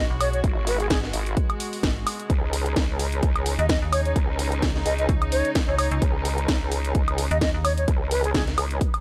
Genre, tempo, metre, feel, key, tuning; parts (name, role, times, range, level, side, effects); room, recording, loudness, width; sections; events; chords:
bass house; 129 BPM; 4/4; swing 56% on 16ths; A4 = 440 Hz
reedy concert flute; melody; 0.0-8.4 s; G#4 to D#5; -30 LUFS; equal; dub echo
warm studio string section; sustained chords; 0.0-9.0 s; B2 to F#4; -36 LUFS; equal; sidechain pumping
metallic FM bass; bass; 0.0-8.6 s; G#1 to D#2; -28 LUFS; equal; tube saturation, sidechain pumping
house drum kit; drums; 0.2-9.0 s; hi-hat, snare drum, woodblock; -30 LUFS; equal
vowel-sweep wobble bass; bass; 0.4-8.8 s; G#1 to C#2; -28 LUFS; equal; chorus, overdrive, sidechain pumping
electronic kick drum; drums; 0.4-8.9 s; -26 LUFS; equal
little or no reverb; -24 LUFS; mono
0.0-9.0 A section
0.0 G#m7; 2.3 C#sus2